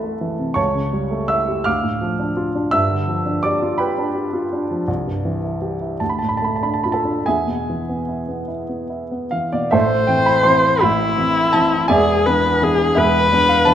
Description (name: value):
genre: classical, romantic duo for viola and grand piano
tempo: 46-59 BPM (dotted quarters)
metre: 6/8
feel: rubato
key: A minor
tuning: A4 = 440 Hz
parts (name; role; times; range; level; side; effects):
- warm baby grand piano; accompaniment; 0.0-13.7 s; E1 to F6; -18 LUFS; right 1 dB; none
- rich viola; melody; 9.8-13.7 s; E4 to C5; -16 LUFS; left 3 dB; none
room: moderate scoring stage reverb, RT60 1.6 s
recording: none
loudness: -16 LUFS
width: side -10 dB against mid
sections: 0.0-9.7 A section; 9.7-13.7 B section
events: none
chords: 0.0 Am/C; 0.6 A7/C#; 1.7 Dm; 2.7 G7; 4.9 C; 6.0 Dm; 7.3 E; 9.7 Am; 11.9 E7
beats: | 0.58 1.66 | 2.73 3.80 | 4.88 6.00 | 7.25 8.49 | 9.74 10.84 | 11.91 12.98